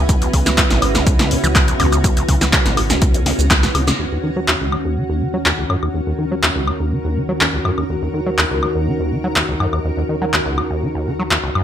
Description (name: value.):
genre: acid house.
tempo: 123 BPM.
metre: 4/4.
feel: straight.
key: Eb phrygian.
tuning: A4 = 441 Hz.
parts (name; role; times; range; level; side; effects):
warm analog pad; sustained chords; 0.0-11.6 s; Db3 to Gb4; -26 LUFS; right 1 dB; chorus, sidechain pumping.
deep acid bass; riff; 0.0-11.6 s; Cb2 to Gb3; -21 LUFS; equal; overdrive, sidechain pumping, ping-pong delay.
round analog bass; bass; 0.0-11.6 s; Ab1 to Eb2; -24 LUFS; equal; sidechain pumping.
granular cloud pad; texture; 0.0-11.6 s; Db4 to Cb5; -24 LUFS; right 1 dB; built-in reverb, analog chorus, sidechain pumping.
electronic kick drum; drums; 0.1-3.6 s; none; -16 LUFS; equal; overdrive.
punchy analog drum machine; drums; 0.1-11.6 s; handclaps, hi-hat, shaker, snare drum, woodblock; -18 LUFS; left 1 dB; overdrive, gated reverb.
room: light reverb.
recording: bright 1980s-style digital production.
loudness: -15 LUFS.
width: side -10 dB against mid.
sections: 0.0-4.0 A section; 4.0-11.6 B section.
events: drop 0.0-4.0; drum fill 3.3-4.0; band accent 3.9.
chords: 0.0 Dbm7; 4.0 Ebm7.